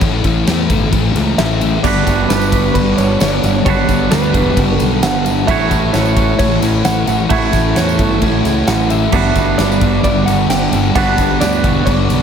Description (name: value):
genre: rock, shoegaze and dream pop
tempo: 132 BPM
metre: 4/4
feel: straight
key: G lydian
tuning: A4 = 439 Hz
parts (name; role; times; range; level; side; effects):
- direct-recorded clean electric guitar; melody; 0.0-12.2 s; B4 to G5; -20 LUFS; equal; wide subtle chorus, tape echo
- thick fuzz guitar; riff; 0.0-12.2 s; G2 to A3; -17 LUFS; left 5 dB; distortion, analog chorus
- fuzz fingered electric bass; bass; 0.0-12.2 s; E1 to E2; -18 LUFS; equal; overdrive
- huge arena drum kit; drums; 0.0-12.2 s; crash cymbal, kick drum, ride cymbal, snare drum; -18 LUFS; equal; none
- twangy electric guitar; riff; 1.8-12.2 s; G3 to C#5; -17 LUFS; right 9 dB; reverse reverb
- tambourine; percussion; 1.8-12.2 s; none; -34 LUFS; right 11 dB; none
room: wet lush hall reverb, RT60 2.1 s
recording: dreamy mix soaked in reverb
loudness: -11 LUFS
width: side -7 dB against mid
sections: 0.0-12.2 A section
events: none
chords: 0.0 A; 1.8 Gmaj7; 5.5 A6; 9.1 Gmaj7